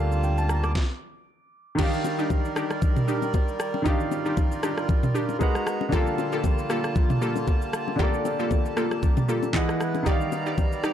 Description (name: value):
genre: amapiano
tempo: 116 BPM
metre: 4/4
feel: swing 55% on 16ths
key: unclear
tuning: A4 = 438 Hz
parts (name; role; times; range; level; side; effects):
- warm baby grand piano; accompaniment; 0.0-10.9 s; D3 to D6; -29 LUFS; right 1 dB; none
- accordion; sustained chords; 0.0-10.9 s; D3 to Bb5; -32 LUFS; right 1 dB; none
- fingered electric bass; bass; 0.0-0.7 s; D2; -24 LUFS; equal; none
- smooth R&B drum kit; drums; 0.1-10.9 s; crash cymbal, handclaps, kick drum, rim click, shaker, snare drum, toms; -25 LUFS; equal; vintage 12-bit sampler grit
- glassy wavetable pluck; stabs; 1.8-10.9 s; Bb3 to D5; -30 LUFS; equal; chorus, digital delay
- congas and bongos; percussion; 1.8-10.7 s; none; -33 LUFS; left 8 dB; none
room: light reverb, digital ambience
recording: dark, warm production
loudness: -22 LUFS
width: side -10 dB against mid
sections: 0.0-1.8 A section; 1.8-10.9 B section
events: stop 0.8-1.8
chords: 0.0 Gm9/D; 1.3 N.C.; 1.8 Ebmaj7; 5.4 Abm9; 5.9 Gm9; 9.5 Emaj7; 10.1 Ebmaj7